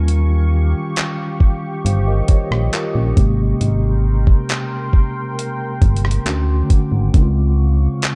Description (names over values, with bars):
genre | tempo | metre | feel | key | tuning
contemporary R&B | 68 BPM | 4/4 | straight | unclear | A4 = 440 Hz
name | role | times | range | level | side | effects
mellow tine electric piano | accompaniment | 0.0-8.2 s | C3 to F5 | -24 LUFS | equal | none
deep dark ambient pad | sustained chords | 0.0-8.2 s | C4 to D6 | -32 LUFS | equal | chorus, built-in reverb
solid FM bass | bass | 0.0-7.9 s | G1 to Eb2 | -18 LUFS | equal | none
dusty soul sampler-style drum kit | drums | 0.1-8.2 s | handclaps, hi-hat, kick drum, rim click | -17 LUFS | equal | none
room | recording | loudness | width
little or no reverb | dark, warm production | -17 LUFS | mono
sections
0.0-8.2 A section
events
none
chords
0.0 Eb9; 3.2 Abmaj9; 6.3 Dmaj7; 7.1 Dbmaj7